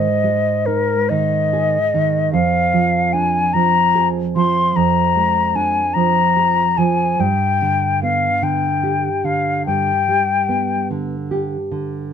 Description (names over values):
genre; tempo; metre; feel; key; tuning
romantic duo for flute and classical guitar; 49 BPM (dotted quarters); 12/8; rubato; unclear; A4 = 440 Hz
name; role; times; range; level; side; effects
mellow concert flute; melody; 0.0-10.9 s; Bb4 to C6; -17 LUFS; left 5 dB; none
nylon-string guitar; accompaniment; 0.0-12.1 s; F2 to Ab4; -19 LUFS; right 5 dB; none
room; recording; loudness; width
moderate studio reverb, RT60 0.6 s; none; -15 LUFS; side -8 dB against mid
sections
0.0-12.1 A section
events
none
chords
0.0 Ab5; 2.3 Ddim/F; 7.2 G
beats
1.10 | 2.33 3.55 4.76 5.96 | 7.21 8.43 9.66 10.90